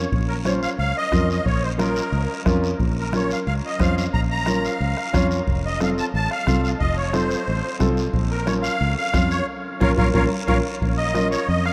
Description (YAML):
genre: latin, cumbia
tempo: 180 BPM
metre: 4/4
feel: straight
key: Bb harmonic minor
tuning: A4 = 440 Hz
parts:
  - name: clear upright piano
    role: accompaniment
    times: 0.0-11.4 s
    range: C4 to Db5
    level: -28 LUFS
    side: equal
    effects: none
  - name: fingered electric bass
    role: bass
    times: 0.0-11.7 s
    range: F1 to F2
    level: -26 LUFS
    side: equal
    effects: none
  - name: bombo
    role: percussion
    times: 0.1-11.7 s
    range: none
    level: -28 LUFS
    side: equal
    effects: none
  - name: congas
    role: percussion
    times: 0.1-11.7 s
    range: none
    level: -31 LUFS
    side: equal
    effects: none
  - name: guiro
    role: percussion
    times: 0.1-11.7 s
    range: none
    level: -40 LUFS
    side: equal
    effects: none
  - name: musette accordion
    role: melody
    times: 0.3-11.7 s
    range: Bb4 to Bb5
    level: -28 LUFS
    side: equal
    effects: none
room: wet cathedral reverb, RT60 7.2 s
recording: in a vast, echoing space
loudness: -22 LUFS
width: mono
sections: 0.0-10.8 A section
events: band accent 9.5-10.8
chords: 0.0 Bbm; 5.5 F; 8.1 Bbm